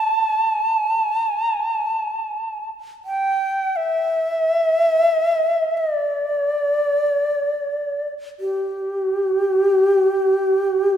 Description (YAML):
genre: japanese traditional, Japanese chamber music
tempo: free time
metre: none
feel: none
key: unclear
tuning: A4 = 436 Hz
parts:
  - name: breathy bright long shakuhachi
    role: solo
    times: 0.0-11.0 s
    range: G4 to A5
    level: -18 LUFS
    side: equal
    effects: none
room: wet scoring stage reverb, RT60 2.0 s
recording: recorded in a church or concert hall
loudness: -18 LUFS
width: side -9 dB against mid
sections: 0.0-11.0 A section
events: none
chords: none